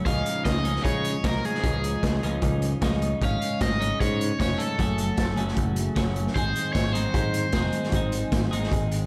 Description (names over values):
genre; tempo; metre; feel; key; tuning
indie rock; 152 BPM; 4/4; straight; Db major; A4 = 440 Hz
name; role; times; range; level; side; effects
twelve-string electric guitar; riff; 0.0-9.1 s; Gb2 to Ab4; -31 LUFS; equal; analog chorus
cranked stack guitar; melody; 0.1-9.1 s; Ab4 to F5; -33 LUFS; equal; overdrive, tape echo
modern bright picked electric bass; bass; 0.1-9.0 s; F1 to Db3; -31 LUFS; equal; none
raw garage drum kit; drums; 0.1-9.0 s; hi-hat, kick drum, snare drum; -30 LUFS; equal; none
room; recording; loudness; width
moderate plate reverb, RT60 1.6 s, small room reverb; dreamy mix soaked in reverb; -25 LUFS; mono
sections
0.0-9.1 A section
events
none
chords
0.1 Dbadd9; 3.2 Absus4; 4.8 Gbmadd9; 6.4 Ab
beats
| 0.07 0.46 0.85 1.25 | 1.64 2.03 2.43 2.82 | 3.21 3.61 4.00 4.39 | 4.79 5.18 5.58 5.97 | 6.36 6.76 7.15 7.54 | 7.94 8.33 8.72